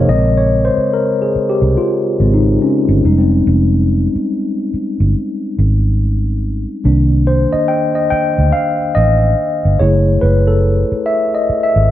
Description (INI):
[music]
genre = R&B, neo-soul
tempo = 71 BPM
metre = 4/4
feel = swing 63% on 16ths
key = unclear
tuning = A4 = 438 Hz
[part]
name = mellow tine electric piano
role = accompaniment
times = 0.0-11.9 s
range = Db3 to G5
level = -14 LUFS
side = left 2 dB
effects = medium stereo tremolo
[part]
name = vintage muted fingered electric bass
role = bass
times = 0.0-11.9 s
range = F1 to D2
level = -13 LUFS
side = right 1 dB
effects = none
[sound]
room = moderate studio reverb, RT60 0.7 s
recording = none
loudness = -12 LUFS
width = side -13 dB against mid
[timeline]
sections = 0.1-11.9 A section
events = tine electric piano solo 0.1-11.9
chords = 0.1 Bbm9; 3.0 Fm9; 6.8 Cm9; 9.8 Gbm9